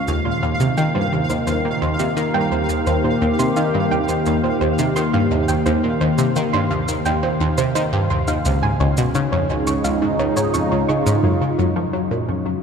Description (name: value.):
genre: ambient, sequencer-driven space music.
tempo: 86 BPM.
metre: 4/4.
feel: straight.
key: unclear.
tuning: A4 = 440 Hz.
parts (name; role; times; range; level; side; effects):
sweeping resonant pad; sustained chords; 0.0-12.6 s; Db3 to Bb4; -21 LUFS; equal; chorus.
soft round pluck; arpeggios; 0.0-12.4 s; Gb4 to Db6; -25 LUFS; right 4 dB; chorus, auto-pan, tape echo.
pulsing gated texture; texture; 0.0-11.3 s; F5; -30 LUFS; right 1 dB; chorus, built-in reverb.
analog pluck; riff; 0.1-12.5 s; Db2 to Gb3; -20 LUFS; equal; chorus, phaser, tape echo.
shaker and congas; percussion; 0.1-11.2 s; none; -33 LUFS; equal; tape echo.
room: wet cathedral reverb, RT60 6.6 s.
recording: in a vast, echoing space.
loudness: -17 LUFS.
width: side -6 dB against mid.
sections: 0.0-11.2 A section; 11.2-12.6 B section.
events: none.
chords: 0.1 Eb6; 8.4 Db; 11.2 Gb.